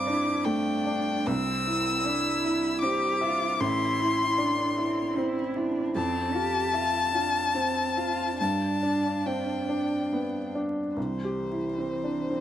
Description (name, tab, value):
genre	neoclassical piano and strings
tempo	69-78 BPM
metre	3/4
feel	rubato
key	C major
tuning	A4 = 439 Hz
part	clear violin	melody	0.0-12.4 s	C5 to E6	-28 LUFS	left 3 dB	none
part	rich cello	second line	0.0-12.4 s	E3 to G4	-34 LUFS	right 4 dB	none
part	clear upright piano	accompaniment	0.0-12.4 s	A1 to E5	-28 LUFS	right 1 dB	none
room	moderate plate reverb, RT60 3.3 s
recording	vinyl crackle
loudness	-25 LUFS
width	side -11 dB against mid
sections	0.0-11.0 A section; 11.0-12.4 B section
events	none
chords	0.0 Gsus2; 1.3 C; 3.6 Am; 6.0 F5; 8.4 Gadd9; 11.0 C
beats	0.47 | 1.28 2.06 2.83 | 3.61 4.39 5.17 | 5.96 6.75 7.55 | 8.40 9.26 10.11 | 10.96 11.78